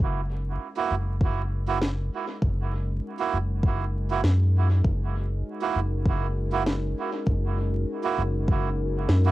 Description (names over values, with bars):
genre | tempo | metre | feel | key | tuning
ambient dub | 99 BPM | 4/4 | swing 57% on 16ths | F# mixolydian | A4 = 440 Hz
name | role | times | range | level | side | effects
warbly tape-like pad | sustained chords | 0.1-9.3 s | G#3 to A#4 | -35 LUFS | left 2 dB | chorus, built-in reverb, cassette tape
round analog bass | bass | 0.0-9.3 s | F#1 to F#2 | -25 LUFS | equal | none
electronic kick drum | drums | 0.0-8.6 s | none | -25 LUFS | equal | studio reverb
melodica | stabs | 0.8-9.3 s | A#3 to F#4 | -29 LUFS | right 7 dB | cassette tape, dub echo
electronic snare drum | drums | 1.8-9.2 s | none | -31 LUFS | equal | overdrive, studio reverb, dub echo
room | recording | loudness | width
little or no reverb | home recording on cassette, vinyl crackle | -23 LUFS | side -16 dB against mid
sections
0.0-9.3 A section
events
fade-in on ambient pad 0.0-9.3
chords
0.0 F#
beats
| 0.00 0.60 1.21 1.81 | 2.42 3.03 3.63 4.24 | 4.84 5.45 6.06 6.66 | 7.27 7.88 8.48 9.09